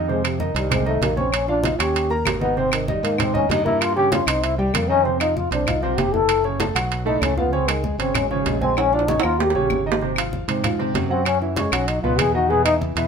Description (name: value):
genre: Afro-Cuban jazz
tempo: 193 BPM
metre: 4/4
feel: straight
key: Ab major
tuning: A4 = 440 Hz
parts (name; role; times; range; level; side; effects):
- warm concert grand piano; accompaniment; 0.0-13.1 s; A2 to Db6; -24 LUFS; right 3 dB; none
- modern bright fingered electric bass; bass; 0.0-13.1 s; Gb1 to Ab2; -26 LUFS; equal; none
- breathy trombone; melody; 0.1-13.1 s; C3 to A4; -21 LUFS; left 2 dB; none
- congas; percussion; 0.1-13.0 s; none; -29 LUFS; left 1 dB; none
- claves; percussion; 0.2-12.8 s; none; -32 LUFS; left 5 dB; none
- timbales; percussion; 0.2-13.1 s; none; -25 LUFS; right 6 dB; none
room: moderate studio reverb, RT60 0.8 s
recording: minimal, uncompressed stereo recording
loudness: -18 LUFS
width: side -6 dB against mid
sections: 0.0-5.0 A section; 5.0-13.1 A section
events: trombone solo 0.0-13.1; drum fill 8.8-10.0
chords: 0.1 F7sus4; 1.3 Bbmadd11; 1.9 Eb5; 2.6 Abmaj9; 3.8 Gdim; 4.4 C5; 5.0 F5; 6.3 Gbm7; 6.9 Bsus2; 7.5 Db5; 8.8 Bbm7; 9.4 Eb7; 10.0 Ab6; 11.3 Gb5; 11.9 B; 12.5 E